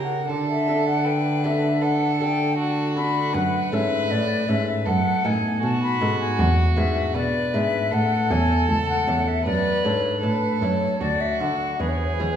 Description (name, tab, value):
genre	classical, baroque-style sonata movement with continuo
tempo	78 BPM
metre	4/4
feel	rubato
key	D major, A major from 3.3 s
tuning	A4 = 440 Hz
part	concert flute	melody	0.0-12.4 s	B4 to B5	-25 LUFS	left 5 dB	none
part	rich violin	second line	0.0-12.4 s	F#4 to B4	-27 LUFS	right 3 dB	none
part	lute	accompaniment	0.0-12.4 s	D2 to A4	-30 LUFS	left 1 dB	none
part	rich cello	bass	0.0-12.4 s	C#2 to E3	-23 LUFS	right 1 dB	none
room	wet recital hall reverb, RT60 1.7 s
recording	heard from further back in the room, small room ambience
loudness	-20 LUFS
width	side -9 dB against mid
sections	0.0-12.4 A section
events	none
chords	0.3 D; 3.3 F#m; 4.9 B7/F#; 6.4 E7; 7.9 A; 9.5 D/F#; 11.0 D; 11.8 E